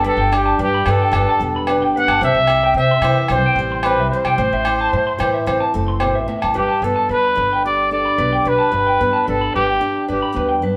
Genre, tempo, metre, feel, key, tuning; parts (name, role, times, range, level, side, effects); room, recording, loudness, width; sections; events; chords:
highlife guitar band; 111 BPM; 4/4; straight; G major; A4 = 440 Hz
breathy trumpet; melody; 0.0-10.6 s; G4 to F#5; -21 LUFS; equal
picked old ladder-braced acoustic guitar; accompaniment; 0.0-10.8 s; G2 to G4; -28 LUFS; equal
electric guitar through a small old amp; arpeggios; 0.0-10.7 s; A4 to C6; -22 LUFS; equal; spring reverb
upright bass; bass; 0.0-10.7 s; E1 to C3; -26 LUFS; equal
agogo bells; percussion; 0.3-6.6 s; -25 LUFS; equal
moderate studio reverb, RT60 0.8 s; band playing live in one room; -17 LUFS; mono
0.0-6.5 A section; 6.5-10.8 B section
0.0 Gadd9; 2.2 C; 4.4 Am; 6.5 Gadd9